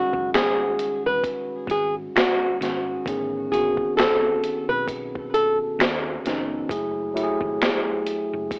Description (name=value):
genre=lo-fi hip hop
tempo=66 BPM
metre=4/4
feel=swing 59% on 16ths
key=unclear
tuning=A4 = 436 Hz
part: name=flamenco guitar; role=melody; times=0.0-5.6 s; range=F#4 to B4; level=-25 LUFS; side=equal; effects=low-pass filter, cassette tape
part: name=mellow tine electric piano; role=accompaniment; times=0.0-8.6 s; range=D#3 to G#4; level=-30 LUFS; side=equal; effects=low-pass filter
part: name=hollow-body short-scale fingered electric bass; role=bass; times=0.0-8.5 s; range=E1 to D#2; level=-42 LUFS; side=equal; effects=none
part: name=boom bap sampler-style drum kit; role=drums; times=0.1-8.6 s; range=finger snaps, hi-hat, kick drum, snare drum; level=-27 LUFS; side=equal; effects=cassette tape
room=wet booth ambience, RT60 0.2 s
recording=home recording on cassette, AM radio sound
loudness=-24 LUFS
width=mono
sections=0.0-8.6 A section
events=none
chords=0.0 Emaj13 (rootless); 3.1 Amaj9#11; 6.7 F#m9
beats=0.33 1.24 2.15 | 3.06 3.96 4.87 5.78 | 6.69 7.60 8.51